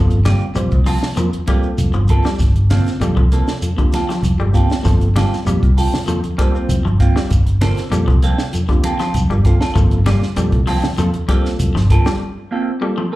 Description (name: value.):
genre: afrobeat.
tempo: 98 BPM.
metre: 4/4.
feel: straight.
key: G minor.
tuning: A4 = 440 Hz.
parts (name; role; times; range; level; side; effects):
reed electric piano; accompaniment; 0.0-13.0 s; Bb3 to C5; -25 LUFS; right 1 dB; slapback echo.
electric guitar at the edge of break-up; arpeggios; 0.0-13.2 s; D3 to G3; -24 LUFS; left 3 dB; slapback echo.
fingered electric bass; bass; 0.0-12.0 s; G1 to C2; -15 LUFS; equal; none.
compact cocktail drum kit; drums; 0.1-12.2 s; hi-hat, kick drum, snare drum; -17 LUFS; equal; none.
shekere; percussion; 0.1-12.2 s; none; -24 LUFS; equal; none.
semi-hollow electric guitar; stabs; 0.2-13.2 s; Bb3 to A4; -24 LUFS; right 4 dB; phaser, slapback echo.
congas; percussion; 0.3-11.8 s; none; -25 LUFS; right 1 dB; none.
room: small room ambience.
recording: live gig heard through the venue's PA, club reverb.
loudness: -14 LUFS.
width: side -17 dB against mid.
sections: 0.0-13.2 A section.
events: break 12.2-13.2.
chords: 0.0 Gm11.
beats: 0.57 1.18 1.79 | 2.40 3.02 3.63 4.24 | 4.86 5.47 6.08 6.70 | 7.31 7.92 8.54 9.15 | 9.76 10.37 10.98 11.60 | 12.21 12.82.